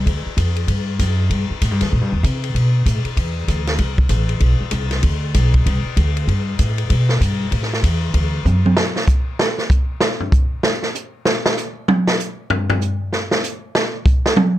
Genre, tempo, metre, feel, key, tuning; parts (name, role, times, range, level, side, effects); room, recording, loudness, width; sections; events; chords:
jazz, big band swing; 193 BPM; 4/4; swing 62% on 8ths; A4 = 440 Hz
upright bass; bass; 0.0-8.8 s; A1 to C3; -17 LUFS; equal
swinging big-band drum kit; drums; 0.1-14.5 s; hi-hat, kick drum, ride cymbal, snare drum, toms; -18 LUFS; equal
light reverb; -16 LUFS; side -14 dB against mid
0.0-8.8 A section; 8.8-14.6 B section
drum fill 8.5-8.8; drum solo 8.8-14.6